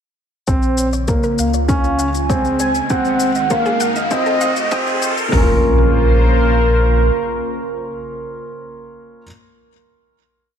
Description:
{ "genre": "piano and strings electronica", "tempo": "99 BPM", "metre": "4/4", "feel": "straight", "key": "Bb minor", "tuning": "A4 = 440 Hz", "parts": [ { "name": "warm velvety synth lead", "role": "melody", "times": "0.5-8.5 s", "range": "Bb4 to Ab5", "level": "-20 LUFS", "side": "right 1 dB", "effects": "chorus, ping-pong delay" }, { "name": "lush unison pad", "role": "sustained chords", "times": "0.5-8.5 s", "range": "Db3 to C5", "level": "-25 LUFS", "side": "left 1 dB", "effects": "chorus, phaser" }, { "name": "analog pluck", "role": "arpeggios", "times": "0.5-5.6 s", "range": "Ab4 to Gb5", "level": "-28 LUFS", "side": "left 1 dB", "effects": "chorus, sidechain pumping, ping-pong delay" }, { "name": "felt-muted upright piano", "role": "riff", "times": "0.5-9.3 s", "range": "Bb3 to Bb4", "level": "-20 LUFS", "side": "right 1 dB", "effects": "ping-pong delay" }, { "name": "round analog bass", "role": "bass", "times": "0.5-7.1 s", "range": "Bb1 to F2", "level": "-18 LUFS", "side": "equal", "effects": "tube saturation, sidechain pumping" }, { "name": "deep house drum kit", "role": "drums", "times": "0.5-5.5 s", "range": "hi-hat, kick drum, toms", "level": "-19 LUFS", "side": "equal", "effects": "overdrive" }, { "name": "shaker", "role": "drums", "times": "0.5-5.3 s", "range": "none", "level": "-28 LUFS", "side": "left 7 dB", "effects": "overdrive, high-pass filter on perc" }, { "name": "riser and impact", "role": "sound effects", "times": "2.0-9.3 s", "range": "none", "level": "-24 LUFS", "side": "equal", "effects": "none" } ], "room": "moderate scoring stage reverb, RT60 1.7 s, digital ambience", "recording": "high-pass filter", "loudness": "-14 LUFS", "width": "side -8 dB against mid", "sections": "0.5-5.3 build; 5.3-7.8 final chord", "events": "build-up 0.5-5.3; filter sweep on analog synth pad 0.5-5.3; filter sweep on synth arpeggio sound 0.5-5.3; filter sweep on soft synth lead 0.5-5.3; filter sweep 0.5-5.3; riser 2.0-5.3", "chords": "0.5 Bbmadd9; 1.7 Dbmaj7; 2.9 Ab7/C; 4.1 F7; 5.3 Bbmadd9", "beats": "| 0.48 1.09 1.69 2.30 | 2.90 3.51 4.12 4.72 | 5.33 5.93 6.54 7.15" }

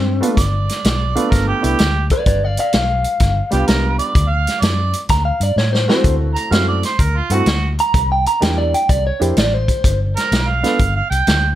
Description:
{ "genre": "electric blues shuffle", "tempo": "126 BPM", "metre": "4/4", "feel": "swing 67% on 8ths", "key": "G mixolydian", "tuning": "A4 = 440 Hz", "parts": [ { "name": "electric guitar through a small old amp", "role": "melody", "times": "0.0-10.0 s", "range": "C4 to Bb5", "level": "-19 LUFS", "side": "equal", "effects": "plate reverb" }, { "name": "vintage muted fingered electric bass", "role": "bass", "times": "0.0-11.6 s", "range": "G1 to A2", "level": "-18 LUFS", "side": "equal", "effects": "none" }, { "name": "clear upright piano", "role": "accompaniment", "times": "0.2-10.8 s", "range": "G3 to A4", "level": "-21 LUFS", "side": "right 2 dB", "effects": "none" }, { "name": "vintage drum kit", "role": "drums", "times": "0.2-11.4 s", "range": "hi-hat, kick drum, snare drum", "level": "-18 LUFS", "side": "equal", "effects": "none" }, { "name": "mellow harmonica", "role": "second line", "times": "0.4-11.5 s", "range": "F4 to Bb5", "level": "-20 LUFS", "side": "right 5 dB", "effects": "overdrive" } ], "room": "light reverb", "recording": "none", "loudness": "-14 LUFS", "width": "side -13 dB against mid", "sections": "0.0-11.6 A section", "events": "drum fill 5.6-6.0", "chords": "0.4 G7; 4.1 D7; 7.9 C7; 9.8 G7", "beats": "| 0.36 0.83 1.31 1.78 | 2.25 2.73 3.20 3.67 | 4.15 4.62 5.10 5.57 | 6.04 6.52 6.99 7.47 | 7.94 8.42 8.89 9.37 | 9.84 10.32 10.79 11.27" }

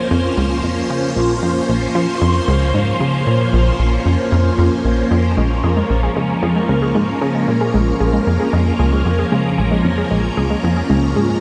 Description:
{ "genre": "ambient, sequencer-driven space music", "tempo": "114 BPM", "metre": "4/4", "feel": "straight", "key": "Bb minor", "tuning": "A4 = 440 Hz", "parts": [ { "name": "phased string machine", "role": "sustained chords", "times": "0.0-11.4 s", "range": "F3 to C5", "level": "-21 LUFS", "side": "equal", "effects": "ensemble chorus, phaser" }, { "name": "plucky analog bass", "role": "riff", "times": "0.1-11.3 s", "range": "Bb1 to F3", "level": "-19 LUFS", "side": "equal", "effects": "analog chorus, tape echo" }, { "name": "unison pluck", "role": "arpeggios", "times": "5.4-11.3 s", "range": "Ab3 to Ab4", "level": "-24 LUFS", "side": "equal", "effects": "tape echo" } ], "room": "wet huge ambient reverb, RT60 8.2 s", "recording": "nothing above 10.9 kHz", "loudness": "-16 LUFS", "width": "mono", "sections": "0.0-11.4 A section", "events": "none", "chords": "0.0 Bbm7", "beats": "0.11 0.64 | 1.16 1.69 2.21 2.74 | 3.27 3.79 4.32 4.85 | 5.37 5.90 6.42 6.95 | 7.48 8.00 8.53 9.06 | 9.58 10.11 10.64 11.16" }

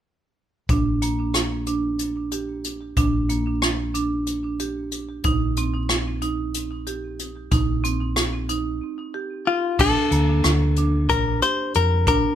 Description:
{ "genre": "progressive instrumental, band music in an uneven meter", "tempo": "184 BPM (eighths)", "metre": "7/8", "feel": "straight", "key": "Bb major", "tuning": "A4 = 438 Hz", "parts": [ { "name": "marimba with medium hard mallets", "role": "arpeggios", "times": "0.7-12.3 s", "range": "Bb3 to G4", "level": "-25 LUFS", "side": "right 3 dB", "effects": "digital delay" }, { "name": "hollow-body short-scale fingered electric bass", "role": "bass", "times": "0.7-12.2 s", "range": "Bb1 to F2", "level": "-25 LUFS", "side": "equal", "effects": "none" }, { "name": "jazz brush drum kit", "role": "drums", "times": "0.7-12.2 s", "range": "crash cymbal, hi-hat, kick drum, rim click", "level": "-24 LUFS", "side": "equal", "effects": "none" }, { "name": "hollow-body jazz guitar", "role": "melody", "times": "9.5-12.3 s", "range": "F4 to C5", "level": "-22 LUFS", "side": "left 6 dB", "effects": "plate reverb" } ], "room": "light reverb", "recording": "lossy compression artefacts", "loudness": "-20 LUFS", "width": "side -10 dB against mid", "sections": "0.7-9.8 A section; 9.8-12.3 B section", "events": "none", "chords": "0.7 Bb; 5.2 Eb6/Bb; 9.8 Bbmaj7", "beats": "| 0.69 1.02 1.34 1.67 2.00 2.32 2.65 | 2.97 3.30 3.62 3.95 4.27 4.60 4.92 | 5.25 5.57 5.90 6.22 6.55 6.87 7.20 | 7.52 7.85 8.17 8.50 8.82 9.15 9.47 | 9.80 10.12 10.45 10.78 11.10 11.43 11.75 | 12.08" }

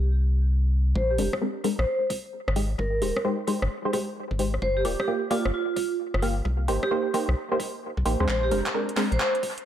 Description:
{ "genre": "UK garage, two-step garage", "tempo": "131 BPM", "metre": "4/4", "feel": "swing 64% on 16ths", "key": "C minor", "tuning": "A4 = 440 Hz", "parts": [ { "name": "rubbery square bass", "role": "bass", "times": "0.0-9.2 s", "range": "D1 to Eb2", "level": "-24 LUFS", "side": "equal", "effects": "tube saturation, sidechain pumping" }, { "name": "vibraphone with hard mallets", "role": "melody", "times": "1.0-9.3 s", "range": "F4 to C5", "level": "-28 LUFS", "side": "right 2 dB", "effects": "low-pass filter, tape echo" }, { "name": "electronic kick drum", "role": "drums", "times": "1.0-9.5 s", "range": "none", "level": "-36 LUFS", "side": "equal", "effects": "high-pass filter on kick, studio reverb" }, { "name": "punchy chord stab", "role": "stabs", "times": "1.2-9.1 s", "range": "Ab3 to F5", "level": "-28 LUFS", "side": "equal", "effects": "chorus, cassette tape, tape echo" }, { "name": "garage drum kit", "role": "drums", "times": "1.2-9.6 s", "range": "handclaps, hi-hat, rim click", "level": "-32 LUFS", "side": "equal", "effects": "studio reverb, tape echo" } ], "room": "moderate spring reverb, RT60 1.1 s", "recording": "echo-heavy mix", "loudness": "-23 LUFS", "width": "side -10 dB against mid", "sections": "1.0-9.7 A section", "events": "build-up 1.0-9.7; filter sweep on synth stab 1.0-9.7; filter sweep on vibraphone 1.0-9.7; drum fill 8.3-9.7", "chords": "0.0 C5; 1.0 Bb9; 2.6 Abmaj7; 4.6 Gm7; 6.5 Cm7; 8.3 Bb9", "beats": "0.04 0.50 | 0.96 1.41 1.87 2.33 | 2.79 3.25 3.71 4.16 | 4.62 5.08 5.54 6.00 | 6.45 6.91 7.37 7.83 | 8.29 8.74 9.20" }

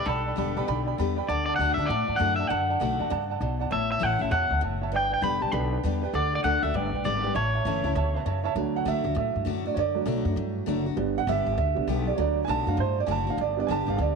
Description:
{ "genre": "rockabilly", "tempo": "199 BPM", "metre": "4/4", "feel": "swing 62% on 8ths", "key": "D major", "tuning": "A4 = 443 Hz", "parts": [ { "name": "electric guitar at the edge of break-up", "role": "melody", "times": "0.0-8.2 s", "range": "A4 to B5", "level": "-28 LUFS", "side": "left 1 dB", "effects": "tape echo" }, { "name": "picked steel-string acoustic guitar", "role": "accompaniment", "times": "0.0-14.2 s", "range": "G2 to G4", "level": "-32 LUFS", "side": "left 15 dB", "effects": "none" }, { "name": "warm upright piano", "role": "accompaniment", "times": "0.0-14.2 s", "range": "F#3 to B5", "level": "-29 LUFS", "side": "right 12 dB", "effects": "none" }, { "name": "upright bass", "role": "bass", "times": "0.1-14.1 s", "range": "E1 to A2", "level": "-29 LUFS", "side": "equal", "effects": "none" } ], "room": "light reverb, studio ambience", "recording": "1960s-style stereo with parts hard left and right", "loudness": "-24 LUFS", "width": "side -5 dB against mid", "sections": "0.0-8.6 A section; 8.6-14.2 B section", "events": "upright piano fill 3.3-3.7; upright piano solo 8.6-14.2", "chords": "0.0 G; 1.3 D; 3.7 A; 4.9 G; 6.1 D; 6.7 G; 7.3 A; 8.6 D; 11.0 G; 12.2 D; 13.4 G", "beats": "| 0.07 0.38 0.68 0.98 | 1.29 1.59 1.90 2.20 | 2.50 2.81 3.11 3.41 | 3.72 4.02 4.32 4.63 | 4.93 5.23 5.53 5.84 | 6.14 6.44 6.74 7.04 | 7.35 7.65 7.95 8.25 | 8.56 8.86 9.16 9.46 | 9.76 10.07 10.37 10.67 | 10.97 11.27 11.57 11.88 | 12.18 12.48 12.78 13.08 | 13.38 13.69 13.99" }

